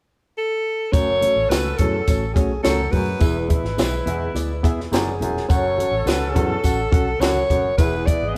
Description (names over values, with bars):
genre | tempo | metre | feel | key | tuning
uptempo 1960s-style soul | 105 BPM | 4/4 | straight | F# minor | A4 = 441 Hz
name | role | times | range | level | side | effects
clear alto saxophone | melody | 0.4-8.4 s | G#4 to D#5 | -25 LUFS | equal | none
mellow horn section | second line | 0.9-8.4 s | E3 to B4 | -34 LUFS | equal | none
reed electric piano | accompaniment | 0.9-8.4 s | E3 to F#5 | -28 LUFS | equal | none
mellow baritone saxophone | riff | 0.9-8.2 s | E2 to F#2 | -30 LUFS | equal | none
vintage muted fingered electric bass | bass | 0.9-8.3 s | E1 to F#2 | -29 LUFS | equal | none
compact cocktail drum kit | drums | 0.9-8.2 s | hi-hat, kick drum, snare drum | -23 LUFS | equal | none
congas | percussion | 0.9-8.2 s | none | -38 LUFS | equal | none
tambourine | percussion | 0.9-7.9 s | none | -42 LUFS | equal | none
room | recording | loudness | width
moderate large studio reverb, RT60 1.2 s | band playing live in one room | -20 LUFS | mono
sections
0.9-8.4 A section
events
none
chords
0.0 N.C.; 0.9 F#m; 3.2 E; 5.5 F#m; 7.8 E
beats
0.36 | 0.93 1.50 2.08 2.65 | 3.22 3.79 4.36 4.93 | 5.50 6.08 6.65 7.22 | 7.79 8.36